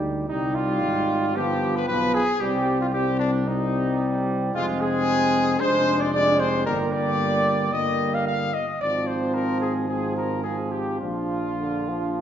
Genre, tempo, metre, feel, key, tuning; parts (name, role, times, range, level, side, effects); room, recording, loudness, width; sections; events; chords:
classical, brass quintet; 112 BPM; 4/4; rubato; A4 = 440 Hz
dark trumpet; melody; 0.0-12.2 s; D4 to F5; -27 LUFS; left 4 dB
bright trombone; accompaniment; 0.0-12.2 s; D3 to Ab3; -29 LUFS; right 2 dB
mellow French horn; accompaniment; 0.0-12.2 s; Bb3 to Eb4; -27 LUFS; left 2 dB
mellow tuba; bass; 0.0-12.2 s; F1 to D2; -29 LUFS; right 1 dB
clear flugelhorn; second line; 0.3-12.2 s; D4 to F5; -28 LUFS; right 5 dB
wet recital hall reverb, RT60 1.4 s; recorded in a church or concert hall, nothing above 7.5 kHz; -21 LUFS; side -9 dB against mid
0.0-12.2 A section
0.3 Cm; 1.4 G7; 2.4 Cm; 4.5 Fm; 5.6 Ddim/F; 6.7 Gm; 8.8 Fm/Ab; 11.0 Bb